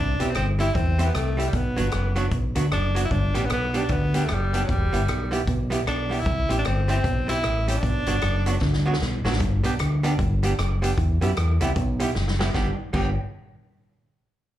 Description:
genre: ska.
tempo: 153 BPM.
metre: 4/4.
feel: swing 61% on 8ths.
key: G major.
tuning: A4 = 440 Hz.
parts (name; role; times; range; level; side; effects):
clear tenor saxophone; melody; 0.0-9.0 s; F#3 to E4; -28 LUFS; equal; slapback echo.
fingered electric bass; bass; 0.0-13.2 s; E1 to F#2; -24 LUFS; equal; none.
archtop guitar, miked and amplified; accompaniment; 0.2-13.1 s; F#3 to G4; -29 LUFS; right 4 dB; slapback echo.
swinging big-band drum kit; drums; 0.2-13.1 s; crash cymbal, hi-hat, kick drum, rim click, snare drum; -28 LUFS; equal; none.
room: small room ambience.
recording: live gig heard through the venue's PA, club reverb.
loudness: -21 LUFS.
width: side -12 dB against mid.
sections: 0.0-9.4 A section; 9.4-12.6 B section; 12.6-14.1 C section.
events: drum fill 8.6-9.4, 12.2-12.6.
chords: 0.0 C; 1.5 Bm; 3.1 G; 4.7 Em; 6.3 C; 7.8 Bm; 9.4 G; 11.0 Em; 12.6 G.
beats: 0.36 0.76 1.15 | 1.54 1.93 2.33 2.72 | 3.11 3.50 3.90 4.29 | 4.68 5.07 5.47 5.86 | 6.25 6.65 7.04 7.43 | 7.83 8.22 8.61 9.01 | 9.40 9.79 10.19 10.58 | 10.97 11.37 11.76 12.16 | 12.55 12.95.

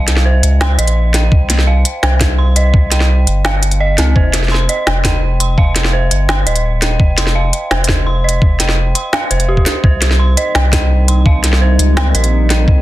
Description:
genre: half-time drum and bass.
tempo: 169 BPM.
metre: 4/4.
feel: half-time.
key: C phrygian.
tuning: A4 = 435 Hz.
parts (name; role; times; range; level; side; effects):
dark detuned synth bell; arpeggios; 0.0-12.8 s; C4 to C6; -19 LUFS; right 2 dB; chorus, tape echo.
saturated sub bass; bass; 0.0-12.8 s; Eb1 to Db2; -13 LUFS; equal; none.
organic electronic drum kit; drums; 0.1-12.6 s; hi-hat, snare drum; -16 LUFS; equal; soft clipping on snare.
electronic kick drum; drums; 1.3-12.8 s; none; -12 LUFS; equal; none.
dark analog pad; sustained chords; 10.4-12.8 s; G3 to Bb4; -21 LUFS; equal; chorus, vintage 12-bit sampler grit, sidechain pumping.
room: digital ambience.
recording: dense, heavily limited modern master.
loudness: -10 LUFS.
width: side -16 dB against mid.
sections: 0.0-12.8 A section.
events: none.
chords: 0.0 Cm7; 4.2 F5; 9.8 Cm7.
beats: 0.25 0.61 0.96 | 1.32 1.67 2.03 2.38 | 2.74 3.09 3.45 3.80 | 4.16 4.51 4.87 5.22 | 5.58 5.93 6.29 6.64 | 7.00 7.35 7.71 8.06 | 8.42 8.77 9.13 9.48 | 9.84 10.19 10.55 10.90 | 11.26 11.61 11.97 12.32 | 12.68.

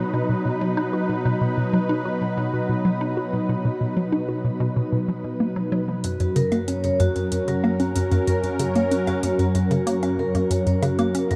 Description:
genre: ambient, sequencer-driven space music.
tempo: 94 BPM.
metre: 4/4.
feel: straight.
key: F# major.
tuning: A4 = 440 Hz.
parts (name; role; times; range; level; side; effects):
sweeping resonant pad; sustained chords; 0.0-11.4 s; F#2 to B4; -27 LUFS; equal; chorus, shimmer reverb.
hollow square pluck; riff; 0.0-11.4 s; F#2 to F#4; -26 LUFS; equal; chorus, delay.
vibraphone with medium mallets; arpeggios; 6.0-11.4 s; F#3 to C#5; -27 LUFS; equal; delay, shimmer reverb.
electronic hi-hat and woodblock; percussion; 6.0-11.4 s; none; -38 LUFS; equal; delay.
room: moderate plate reverb, RT60 3.6 s.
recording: none.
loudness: -23 LUFS.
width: mono.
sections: 0.0-11.4 A section.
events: none.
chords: 0.0 B; 6.0 F#.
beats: 0.30 | 0.93 1.57 2.21 2.85 | 3.49 4.12 4.76 5.40 | 6.04 6.68 7.32 7.96 | 8.59 9.23 9.87 10.51 | 11.15.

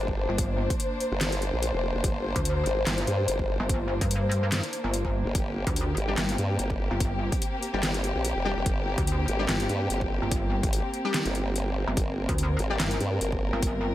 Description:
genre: heavy wobble dubstep.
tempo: 145 BPM.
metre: 4/4.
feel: swing 54% on 16ths, half-time.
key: G phrygian.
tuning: A4 = 441 Hz.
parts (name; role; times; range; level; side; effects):
warm studio string section; sustained chords; 0.0-13.9 s; Bb3 to C5; -31 LUFS; left 2 dB; sidechain pumping.
formant-sweep wobble bass; bass; 0.0-13.5 s; F1 to G2; -28 LUFS; equal; chorus, overdrive.
electronic kick drum; drums; 0.1-13.7 s; none; -30 LUFS; equal; overdrive.
pulsing pluck wobble bass; bass; 0.3-13.9 s; G1 to G2; -27 LUFS; equal; chorus, overdrive.
dubstep drum kit; drums; 0.4-13.7 s; handclaps, hi-hat, snare drum; -31 LUFS; left 1 dB; overdrive.
orchestra-hit-like synth stab; stabs; 6.1-12.8 s; G3 to G4; -34 LUFS; left 2 dB; built-in reverb, digital delay.
room: digital ambience.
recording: none.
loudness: -25 LUFS.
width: side -14 dB against mid.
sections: 0.0-13.9 A section.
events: none.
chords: 0.0 Gm.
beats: | 0.38 0.80 1.21 1.62 | 2.04 2.45 2.87 3.28 | 3.69 4.11 4.52 4.94 | 5.35 5.76 6.18 6.59 | 7.00 7.42 7.83 8.25 | 8.66 9.07 9.49 9.90 | 10.31 10.73 11.14 11.56 | 11.97 12.38 12.80 13.21 | 13.62.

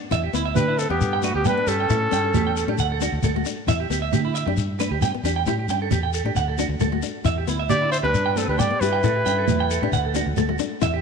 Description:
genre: highlife guitar band.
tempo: 134 BPM.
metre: 4/4.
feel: straight.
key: E minor.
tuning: A4 = 440 Hz.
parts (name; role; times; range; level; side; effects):
nylon-string guitar; accompaniment; 0.0-11.0 s; A3 to G4; -29 LUFS; left 14 dB; none.
semi-hollow electric guitar; arpeggios; 0.1-11.0 s; E4 to G5; -26 LUFS; right 12 dB; slapback echo.
fingered electric bass; bass; 0.1-11.0 s; D2 to D3; -26 LUFS; equal; none.
congas; percussion; 0.1-10.9 s; none; -29 LUFS; right 14 dB; none.
shekere; percussion; 0.1-10.9 s; none; -28 LUFS; left 5 dB; none.
breathy trumpet; melody; 0.6-3.0, 7.7-10.1 s; F#4 to D5; -24 LUFS; equal; slapback echo.
growling alto saxophone; second line; 0.6-2.8, 7.7-10.2 s; A3 to G4; -32 LUFS; left 10 dB; none.
room: moderate plate reverb, RT60 2.7 s.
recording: 1960s-style stereo with parts hard left and right.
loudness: -20 LUFS.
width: side -5 dB against mid.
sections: 0.1-11.0 A section.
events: none.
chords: 0.1 Em7; 1.0 G; 1.9 A7; 2.8 D; 3.7 Em7; 4.6 G; 5.5 A7; 6.4 D; 7.3 Em7; 8.1 G; 9.0 A7; 9.9 D.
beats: | 0.11 0.56 1.00 1.45 | 1.89 2.34 2.79 3.23 | 3.68 4.13 4.57 5.02 | 5.47 5.91 6.36 6.81 | 7.25 7.70 8.14 8.59 | 9.04 9.48 9.93 10.38 | 10.82.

